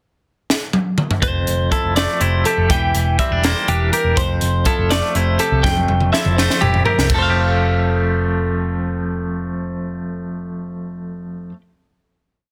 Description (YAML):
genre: math rock and midwest emo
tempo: 82 BPM (dotted quarters)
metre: 6/8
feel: straight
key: F major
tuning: A4 = 443 Hz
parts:
  - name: crisp fusion drum kit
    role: drums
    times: 0.5-7.2 s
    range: crash cymbal, hi-hat, kick drum, snare drum, toms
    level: -22 LUFS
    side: equal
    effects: none
  - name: twangy electric guitar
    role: accompaniment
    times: 1.2-11.6 s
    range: F2 to G4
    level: -24 LUFS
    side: equal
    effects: tremolo
  - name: twelve-string electric guitar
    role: arpeggios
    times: 1.2-11.5 s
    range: G4 to G5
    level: -23 LUFS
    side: equal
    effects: plate reverb
  - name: hollow-body short-scale picked electric bass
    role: bass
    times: 1.2-11.5 s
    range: E1 to C2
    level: -22 LUFS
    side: equal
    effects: none
room: light reverb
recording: dense, heavily limited modern master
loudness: -18 LUFS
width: mono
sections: 0.0-1.2 pickup bar; 1.2-7.1 A section; 7.1-10.0 final chord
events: drum fill 0.5-1.2, 5.6-7.1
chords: 0.0 N.C.; 1.2 Fmaj9; 2.7 C9/E; 4.2 Fmaj9; 7.1 Fadd9